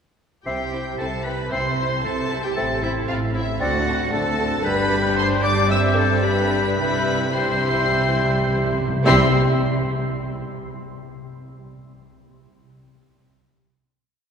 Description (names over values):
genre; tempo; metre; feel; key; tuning
quick classical-period movement for symphony orchestra; 105-116 BPM; 4/4; straight; C major; A4 = 440 Hz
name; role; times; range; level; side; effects
dark symphonic viola section; accompaniment; 0.4-9.4 s; C4 to E5; -28 LUFS; right 1 dB; none
rich chamber violin section; melody; 0.5-9.4 s; E5 to E6; -27 LUFS; left 3 dB; none
clear oboe; second line; 0.5-9.3 s; E4 to E5; -30 LUFS; equal; none
concert flute; second line; 0.5-9.4 s; E6 to C7; -29 LUFS; left 1 dB; none
dark clarinet; second line; 0.5-9.3 s; C5 to E5; -32 LUFS; equal; none
rich studio violin section; second line; 0.5-9.4 s; G3 to E4; -30 LUFS; left 2 dB; none
warm bassoon; accompaniment; 0.5-9.3 s; G3 to C4; -29 LUFS; left 1 dB; none
warm French horn section; sustained chords; 0.5-9.3 s; G3 to E4; -30 LUFS; left 3 dB; none
dark chamber cello section; bass; 0.5-9.4 s; D2 to C3; -28 LUFS; right 2 dB; none
rich studio double bass section; bass; 0.5-9.4 s; G1 to D2; -28 LUFS; right 2 dB; none
timpani; percussion; 0.5-1.2, 6.8-9.3 s; C3; -26 LUFS; right 1 dB; none
room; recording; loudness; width
wet cathedral reverb, RT60 4.5 s; minimal, uncompressed stereo recording; -18 LUFS; side -6 dB against mid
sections
0.5-9.1 A section; 9.1-11.3 final chord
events
timpani fill 6.8-9.1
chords
0.5 C; 2.6 Am; 3.6 D7; 4.7 G; 5.7 C/G; 6.2 G; 6.8 C